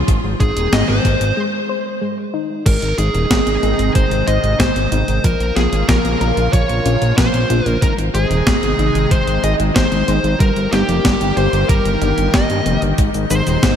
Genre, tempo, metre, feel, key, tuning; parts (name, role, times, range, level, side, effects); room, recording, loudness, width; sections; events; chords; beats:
synthwave; 93 BPM; 4/4; straight; Ab major; A4 = 440 Hz
lush unison pad; sustained chords; 0.0-13.8 s; C3 to Ab4; -22 LUFS; equal; chorus, phaser, sidechain pumping
soft round pluck; arpeggios; 0.0-13.8 s; F3 to C5; -25 LUFS; left 4 dB; chorus, cassette tape, digital delay
fat analog bass; bass; 0.0-13.7 s; Eb1 to G2; -18 LUFS; equal; sidechain pumping
clean 12-bit digital drum machine; drums; 0.1-13.8 s; cabasa, crash cymbal, hi-hat, snare drum; -21 LUFS; equal; overdrive, gated reverb
electronic kick drum; drums; 0.1-13.8 s; -16 LUFS; equal
high-gain lead guitar; melody; 0.4-13.8 s; G4 to Eb5; -20 LUFS; equal; distortion, ping-pong delay
moderate lush hall reverb, RT60 2.5 s; bright 1980s-style digital production; -14 LUFS; side -8 dB against mid
0.0-2.7 A section; 2.7-13.8 B section
filter sweep on synth arpeggio sound 0.0-2.7; break 1.4-2.7
0.1 Ab; 5.2 Bbm; 7.8 Ab; 10.4 Eb; 13.0 Ab
| 0.08 0.73 1.37 2.02 | 2.66 3.31 3.95 4.60 | 5.24 5.89 6.53 7.18 | 7.82 8.47 9.11 9.76 | 10.40 11.05 11.69 12.34 | 12.98 13.63